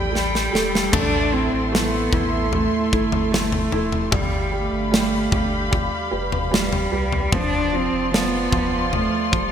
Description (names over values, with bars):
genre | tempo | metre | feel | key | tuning
pop ballad | 75 BPM | 4/4 | straight | unclear | A4 = 440 Hz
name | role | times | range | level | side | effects
bright upright piano | accompaniment | 0.0-9.5 s | F3 to E4 | -27 LUFS | right 5 dB | none
warm studio string section | sustained chords | 0.0-9.5 s | F4 to C6 | -27 LUFS | left 2 dB | none
nylon-string guitar | arpeggios | 0.0-9.5 s | A2 to C5 | -32 LUFS | left 2 dB | none
warm sub bass | bass | 0.0-9.5 s | D1 to C2 | -28 LUFS | equal | none
dark cello | melody | 0.1-9.5 s | G3 to D4 | -24 LUFS | right 1 dB | none
modern studio drum kit | drums | 0.2-9.5 s | crash cymbal, kick drum, snare drum, toms | -23 LUFS | equal | gated reverb
room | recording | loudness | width
moderate lush hall reverb, RT60 2.8 s | bright 1980s-style digital production | -18 LUFS | side -8 dB against mid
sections
0.0-9.5 A section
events
drum fill 0.1-0.9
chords
0.0 Gadd9; 0.9 Am; 4.1 G7; 7.3 Dm7/F